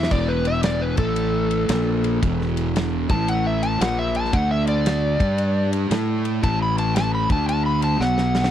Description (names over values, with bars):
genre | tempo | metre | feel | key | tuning
blues rock power trio and southern rock | 114 BPM | 4/4 | swing 65% on 8ths | unclear | A4 = 440 Hz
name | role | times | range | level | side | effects
overdriven slide guitar | melody | 0.0-8.5 s | A4 to B5 | -25 LUFS | left 1 dB | tape echo
thick fuzz guitar | riff | 0.0-8.5 s | E2 to A4 | -24 LUFS | equal | distortion
fuzz fingered electric bass | bass | 0.0-8.5 s | E1 to A2 | -23 LUFS | equal | overdrive
big rock drum kit | drums | 0.0-8.5 s | crash cymbal, kick drum, ride cymbal, snare drum | -26 LUFS | equal | none
room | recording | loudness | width
little or no reverb | dry, close 1970s-style studio recording | -19 LUFS | side -10 dB against mid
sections
0.0-8.5 A section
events
electric slide guitar solo 0.0-8.5; drum fill 8.0-8.5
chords
0.0 E5; 0.9 A5; 1.7 Bb5; 2.2 E5; 3.0 A5; 3.8 Bb5; 4.3 D5; 5.1 G5; 5.9 A5; 7.2 D5; 8.0 B5